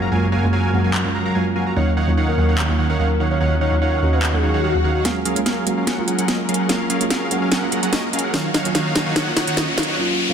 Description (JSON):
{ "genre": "future bass", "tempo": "146 BPM", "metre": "4/4", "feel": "half-time", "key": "F# major", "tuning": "A4 = 440 Hz", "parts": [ { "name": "soft round pluck", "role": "accompaniment", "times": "0.0-10.3 s", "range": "D#2 to G#4", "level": "-21 LUFS", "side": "right 1 dB", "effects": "lush chorus" }, { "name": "warm studio string section", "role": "sustained chords", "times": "0.0-10.0 s", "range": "D#2 to A#4", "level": "-30 LUFS", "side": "left 2 dB", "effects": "none" }, { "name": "big bright polysynth", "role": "riff", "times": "0.0-10.0 s", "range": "D#3 to A#5", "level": "-22 LUFS", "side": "right 1 dB", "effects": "dub echo" }, { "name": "impact, swell and riser", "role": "sound effects", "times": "0.0-0.1, 4.4-10.3 s", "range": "none", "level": "-28 LUFS", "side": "left 4 dB", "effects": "none" }, { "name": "trap drum kit", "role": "drums", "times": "0.9-9.9 s", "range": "handclaps, hi-hat, snare drum", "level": "-23 LUFS", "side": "equal", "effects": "low-pass filter on hats, low-pass filter on cymbals, soft clipping on snare, low-pass filter on snare, low-pass filter on toms" }, { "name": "soft octave-layered synth lead", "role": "melody", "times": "1.8-5.0 s", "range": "F#4 to C#5", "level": "-27 LUFS", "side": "left 2 dB", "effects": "chorus, dub echo" }, { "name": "saturated sub bass", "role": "bass", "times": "5.0-10.0 s", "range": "none", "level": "barely audible", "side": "none", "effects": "none" } ], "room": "light reverb", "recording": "dense, heavily limited modern master", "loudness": "-17 LUFS", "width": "side -7 dB against mid", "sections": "0.0-5.1 A section; 5.1-10.3 B section", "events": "swell 4.4-5.1; build-up 5.1-10.3; drum fill 5.1-10.0; riser 5.1-10.3; filter sweep on analog polysynth 5.1-10.3", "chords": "0.0 F#maj7; 1.8 D#m7; 5.1 F#maj7; 8.3 D#m7" }